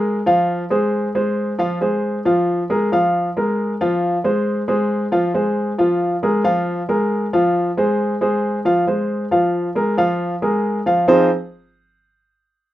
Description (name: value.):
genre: latin.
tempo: 136 BPM.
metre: 4/4.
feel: straight.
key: F minor.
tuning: A4 = 438 Hz.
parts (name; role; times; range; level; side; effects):
warm baby grand piano; solo; 0.0-11.3 s; F3 to F5; -16 LUFS; equal; none.
room: moderate studio reverb, RT60 0.5 s.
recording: rough home demo mix, faint mains hum.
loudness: -16 LUFS.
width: side -14 dB against mid.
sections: 0.0-11.1 A section; 11.1-12.7 B section.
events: none.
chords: 0.5 Fm; 2.3 Bb5; 4.0 Fm; 5.8 Bb5; 7.6 Fm; 9.3 Bb5; 11.1 Fm7.